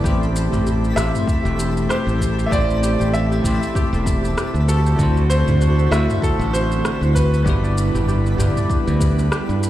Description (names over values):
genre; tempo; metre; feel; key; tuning
sunset chillout; 97 BPM; 4/4; swing 56% on 16ths; A dorian; A4 = 440 Hz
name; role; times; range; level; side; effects
bell-like tine electric piano; accompaniment; 0.0-9.7 s; G3 to C5; -25 LUFS; moving between left 4 dB and right 3 dB; medium stereo tremolo, auto-pan, digital delay, shimmer reverb
airy breathy pad; sustained chords; 0.0-9.7 s; D3 to B4; -27 LUFS; left 1 dB; chorus, shimmer reverb
Celtic harp; arpeggios; 0.0-9.7 s; F#4 to B5; -29 LUFS; equal; digital delay, shimmer reverb
modern bright fingered electric bass; bass; 0.0-9.7 s; E1 to G2; -18 LUFS; equal; none
electronic kick drum; drums; 0.0-9.1 s; none; -21 LUFS; equal; none
twinkling granular texture; texture; 0.0-9.7 s; A4 to B5; -35 LUFS; left 1 dB; built-in reverb, shimmer reverb
deep house drum kit; drums; 0.1-9.7 s; rim click, shaker, toms; -27 LUFS; equal; none
clear baby grand piano; melody; 1.0-9.3 s; A4 to E5; -26 LUFS; right 1 dB; digital delay, shimmer reverb
room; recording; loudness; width
light reverb; played on a big sound system in a bare room, large studio reverb; -16 LUFS; side -13 dB against mid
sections
0.0-9.7 A section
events
none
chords
0.0 Am7; 4.7 D9; 7.5 G6